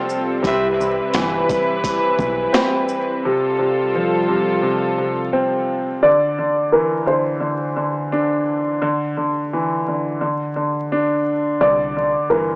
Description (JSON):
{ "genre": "hip hop, boom-bap hip-hop", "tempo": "86 BPM", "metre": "4/4", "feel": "swing 57% on 16ths", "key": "unclear", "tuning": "A4 = 442 Hz", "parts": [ { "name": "warm baby grand piano", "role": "accompaniment", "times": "0.0-12.6 s", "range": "C3 to D4", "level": "-19 LUFS", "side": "equal", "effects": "cassette tape, high-pass filter, low-pass filter" }, { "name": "warm studio string section", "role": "sustained chords", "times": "0.0-6.0 s", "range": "G3 to B4", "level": "-21 LUFS", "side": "equal", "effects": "high-pass filter, low-pass filter" }, { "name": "boom bap sampler-style drum kit", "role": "drums", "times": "0.1-3.1 s", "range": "hi-hat, kick drum, shaker, snare drum", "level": "-23 LUFS", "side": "equal", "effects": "none" }, { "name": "deep dub fingered electric bass", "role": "bass", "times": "0.4-2.5, 11.6-12.6 s", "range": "G1 to C2", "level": "-29 LUFS", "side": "equal", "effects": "tube saturation" }, { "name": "clear trumpet section", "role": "stabs", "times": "0.5-0.7 s", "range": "C4 to E5", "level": "-25 LUFS", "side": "equal", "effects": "high-pass filter, low-pass filter, analog delay" }, { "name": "dark upright piano", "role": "melody", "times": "6.0-12.6 s", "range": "Bb4 to D5", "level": "-17 LUFS", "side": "equal", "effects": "high-pass filter, low-pass filter" } ], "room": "light reverb, studio reverb", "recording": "dry, gritty hardware recording, vinyl crackle, small speaker sound", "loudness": "-16 LUFS", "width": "side -29 dB against mid", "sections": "0.0-6.0 A section; 6.0-12.6 B section", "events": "break 0.0-3.2; drums muted 3.2-6.0", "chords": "0.4 Cmaj7; 3.2 Fadd9; 6.0 Dsus2; 10.2 N.C.; 11.6 Cadd9" }